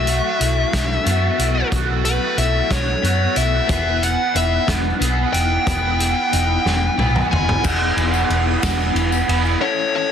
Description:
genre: indie rock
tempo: 61 BPM (dotted quarters)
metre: 6/8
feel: straight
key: E major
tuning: A4 = 440 Hz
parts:
  - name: fuzz lead guitar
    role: melody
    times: 0.0-10.1 s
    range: B4 to G#5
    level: -21 LUFS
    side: left 4 dB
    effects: distortion, slapback echo
  - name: electric guitar through a small old amp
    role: riff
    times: 0.0-10.1 s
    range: F#3 to A4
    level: -25 LUFS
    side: left 14 dB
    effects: harmonic tremolo
  - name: raw garage guitar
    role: riff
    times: 0.0-9.6 s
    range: E3 to G#4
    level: -22 LUFS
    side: right 8 dB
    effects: overdrive, ensemble chorus, slapback echo
  - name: hollow-body short-scale fingered electric bass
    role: bass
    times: 0.0-9.5 s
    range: E1 to F#2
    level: -21 LUFS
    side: equal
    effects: none
  - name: loose indie drum kit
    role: drums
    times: 0.1-9.4 s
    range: crash cymbal, hi-hat, kick drum, ride cymbal, snare drum, toms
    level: -23 LUFS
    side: equal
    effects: none
  - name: phased string machine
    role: sustained chords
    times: 7.6-10.1 s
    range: A4 to E6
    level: -31 LUFS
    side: left 2 dB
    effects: ensemble chorus, phaser
  - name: tambourine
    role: percussion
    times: 7.6-9.5 s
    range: none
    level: -34 LUFS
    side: left 21 dB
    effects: none
room: light reverb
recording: dense, heavily limited modern master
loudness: -16 LUFS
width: side -8 dB against mid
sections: 0.0-7.6 A section; 7.6-9.6 B section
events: lead electric guitar solo 0.0-7.6; drum fill 6.7-7.6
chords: 0.0 B7sus4; 3.7 Emaj7; 9.6 F#m7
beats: 0.73 | 1.72 2.70 | 3.69 4.68 | 5.67 6.66 | 7.64 8.63 | 9.62

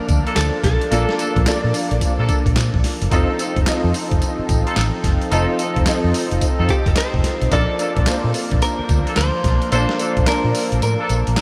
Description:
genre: R&B, new jack swing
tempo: 109 BPM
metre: 4/4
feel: swing 63% on 16ths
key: Bb major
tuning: A4 = 439 Hz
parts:
  - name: direct-recorded clean electric guitar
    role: melody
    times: 0.0-1.2, 6.7-11.4 s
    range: G4 to D5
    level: -27 LUFS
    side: equal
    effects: lush chorus, analog delay
  - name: warm baby grand piano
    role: accompaniment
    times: 0.0-11.4 s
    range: Bb3 to A5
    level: -26 LUFS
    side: equal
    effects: ensemble chorus
  - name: chorused pulse-width pad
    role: sustained chords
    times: 0.0-11.4 s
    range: F3 to A4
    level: -29 LUFS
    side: equal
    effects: none
  - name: vintage muted fingered electric bass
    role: bass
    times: 0.0-11.3 s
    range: F1 to Bb2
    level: -22 LUFS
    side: equal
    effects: none
  - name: boom bap sampler-style drum kit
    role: drums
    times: 0.1-11.4 s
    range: handclaps, hi-hat, kick drum, snare drum, tambourine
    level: -23 LUFS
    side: equal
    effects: none
  - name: warm horn section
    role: stabs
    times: 0.3-11.2 s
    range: Bb3 to A4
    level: -30 LUFS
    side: equal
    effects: none
room: moderate huge ambient reverb, RT60 8.5 s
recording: dreamy mix soaked in reverb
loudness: -18 LUFS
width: mono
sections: 0.0-11.4 A section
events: kick muted 10.8-11.4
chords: 0.0 Bbmaj7; 3.1 F7; 7.5 Bbmaj7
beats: 0.36 | 0.91 1.46 2.01 2.56 | 3.11 3.66 4.21 4.76 | 5.32 5.87 6.42 6.97 | 7.52 8.07 8.62 9.17 | 9.72 10.27 10.82 11.37

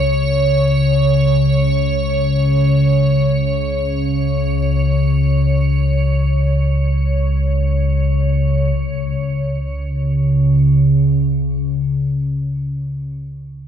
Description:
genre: dark ambient drone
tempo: free time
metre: none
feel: none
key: unclear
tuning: A4 = 440 Hz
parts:
  - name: deep rumbling drone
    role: drone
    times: 0.0-12.3 s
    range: C#2 to C#3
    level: -15 LUFS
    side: equal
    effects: built-in reverb
  - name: icy glass pad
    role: texture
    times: 0.0-8.8 s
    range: C#5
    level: -22 LUFS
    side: right 1 dB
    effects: chorus, built-in reverb, shimmer reverb
room: wet cathedral reverb, RT60 5.4 s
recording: dark, warm production, nothing above 10.8 kHz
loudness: -14 LUFS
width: side -8 dB against mid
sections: 0.0-8.8 A section; 8.8-12.7 B section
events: none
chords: none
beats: free time

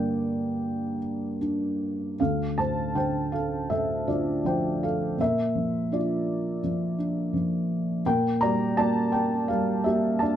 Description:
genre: classical, lyrical solo piano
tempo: 76-86 BPM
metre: 4/4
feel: rubato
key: D minor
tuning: A4 = 438 Hz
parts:
  - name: felt-muted upright piano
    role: solo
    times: 0.0-10.4 s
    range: D2 to Bb5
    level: -24 LUFS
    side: equal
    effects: none
room: moderate studio reverb, RT60 0.6 s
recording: dark, warm production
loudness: -24 LUFS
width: side -10 dB against mid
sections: 0.0-2.2 A section; 2.2-10.4 B section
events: none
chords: 0.0 Gm; 2.2 Dm7; 5.2 Bb; 8.0 Gm/Bb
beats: 0.63 1.41 | 2.19 2.96 3.71 4.45 | 5.19 5.92 6.64 7.34 | 8.05 8.77 9.49 10.20

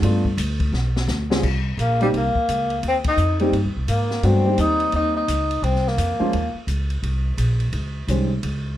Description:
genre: modal jazz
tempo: 172 BPM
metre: 4/4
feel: swing 63% on 8ths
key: C phrygian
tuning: A4 = 440 Hz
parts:
  - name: warm grand piano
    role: accompaniment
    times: 0.0-8.3 s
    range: Db3 to C5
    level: -23 LUFS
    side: equal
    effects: none
  - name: upright bass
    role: bass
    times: 0.0-8.8 s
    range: Bb1 to Ab2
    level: -22 LUFS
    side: equal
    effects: none
  - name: open jazz drum kit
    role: drums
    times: 0.0-8.5 s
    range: crash cymbal, hi-hat, kick drum, ride cymbal, snare drum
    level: -30 LUFS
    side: left 1 dB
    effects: none
  - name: mellow tenor saxophone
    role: melody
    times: 1.8-6.6 s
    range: G3 to Eb4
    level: -21 LUFS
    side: left 1 dB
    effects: none
room: moderate club reverb, RT60 0.7 s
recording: dark, warm production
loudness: -19 LUFS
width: side -13 dB against mid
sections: 0.0-1.4 A section; 1.4-8.8 B section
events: drum fill 0.7-1.4; band accent 3.0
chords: 0.0 G7; 1.4 Cm7; 7.0 Bbm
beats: | 0.03 0.38 0.73 1.08 | 1.43 1.78 2.13 2.48 | 2.83 3.18 3.53 3.88 | 4.23 4.58 4.93 5.28 | 5.63 5.98 6.33 6.68 | 7.03 7.38 7.73 8.08 | 8.43

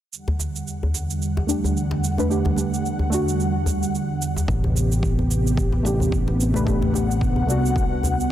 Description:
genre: organic downtempo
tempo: 110 BPM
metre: 4/4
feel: swing 57% on 16ths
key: E minor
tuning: A4 = 440 Hz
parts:
  - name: warm analog pad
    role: sustained chords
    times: 0.1-8.3 s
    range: E2 to F#5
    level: -24 LUFS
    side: right 1 dB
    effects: chorus, sidechain pumping
  - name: shaker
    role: drums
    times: 0.1-8.3 s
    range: none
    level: -33 LUFS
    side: right 7 dB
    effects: none
  - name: djembe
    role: percussion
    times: 0.3-8.2 s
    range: none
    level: -27 LUFS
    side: left 1 dB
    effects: none
  - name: deep mellow chord stab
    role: accompaniment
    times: 1.5-8.3 s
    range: A3 to B4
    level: -26 LUFS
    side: left 1 dB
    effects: chorus, sidechain pumping, tape echo
  - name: fretless electric bass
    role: bass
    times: 4.5-8.3 s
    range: A1 to C2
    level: -22 LUFS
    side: equal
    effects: none
  - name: electronic kick drum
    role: drums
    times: 4.5-7.9 s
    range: none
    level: -24 LUFS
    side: equal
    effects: overdrive
room: light reverb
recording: dense, heavily limited modern master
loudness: -20 LUFS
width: side -12 dB against mid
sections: 0.1-8.3 A section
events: none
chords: 0.1 Em9; 4.5 Am9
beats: | 0.12 0.67 1.22 1.76 | 2.31 2.85 3.40 3.94 | 4.49 5.03 5.58 6.12 | 6.67 7.21 7.76 8.31

